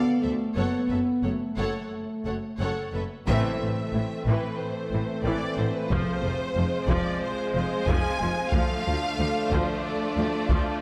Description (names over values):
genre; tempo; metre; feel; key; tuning
cinematic, epic orchestral film score; 91 BPM; 4/4; straight; A harmonic minor; A4 = 440 Hz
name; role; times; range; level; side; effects
clear symphonic violin section; melody; 0.0-10.8 s; B4 to Ab5; -36 LUFS; equal; none
warm studio violin section; second line; 0.0-10.8 s; C4 to D5; -40 LUFS; equal; none
clear symphonic viola section; accompaniment; 0.0-10.8 s; D3 to A4; -35 LUFS; equal; none
mellow French horn section; sustained chords; 0.0-10.8 s; A3 to C5; -33 LUFS; equal; none
clear symphonic double bass section; bass; 0.2-10.6 s; F1 to D2; -34 LUFS; equal; none
rich symphonic cello section; bass; 0.2-10.6 s; D2 to A2; -35 LUFS; equal; none
dark trombone section; sustained chords; 3.3-10.8 s; E3 to Ab4; -37 LUFS; equal; none
taiko ensemble; drums; 3.3-10.8 s; none; -31 LUFS; equal; none
timpani; percussion; 3.3-4.2 s; A2; -37 LUFS; equal; none
room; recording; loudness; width
wet scoring stage reverb, RT60 1.9 s; none; -27 LUFS; mono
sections
0.0-3.3 A section; 3.3-10.8 A section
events
band accent 3.3-3.9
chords
0.0 Dm; 0.6 F#m; 3.3 Am; 5.9 Fm; 8.5 Dm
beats
| 0.56 1.23 1.91 2.60 | 3.27 3.93 4.59 5.25 | 5.90 6.56 7.22 7.88 | 8.54 9.19 9.84 10.49